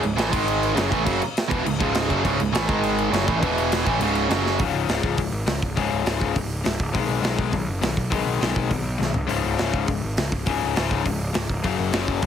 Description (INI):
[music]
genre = punk rock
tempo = 204 BPM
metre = 4/4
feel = straight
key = C# minor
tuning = A4 = 441 Hz
[part]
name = raw garage guitar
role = riff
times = 0.0-12.3 s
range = C#2 to A3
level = -25 LUFS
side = left 9 dB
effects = overdrive
[part]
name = tight distorted guitar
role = riff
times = 0.0-4.6 s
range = C#2 to A3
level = -23 LUFS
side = right 10 dB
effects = distortion
[part]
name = fuzz picked electric bass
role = bass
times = 0.0-12.3 s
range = C#1 to C#2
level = -27 LUFS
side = equal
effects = overdrive
[part]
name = big rock drum kit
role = drums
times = 0.0-12.3 s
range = crash cymbal, hi-hat, kick drum, snare drum, toms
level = -26 LUFS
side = equal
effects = none
[sound]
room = light reverb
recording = heavily compressed radio sound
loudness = -20 LUFS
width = side -8 dB against mid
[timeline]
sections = 0.0-4.6 A section; 4.6-12.3 B section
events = drum fill 4.4, 9.0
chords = 0.3 G#5; 0.8 C#m; 2.7 G#5; 3.1 C#m; 3.4 E5; 3.9 C#m; 4.3 F#5; 4.6 C#5; 6.9 G#m; 9.1 C#5; 11.6 F#5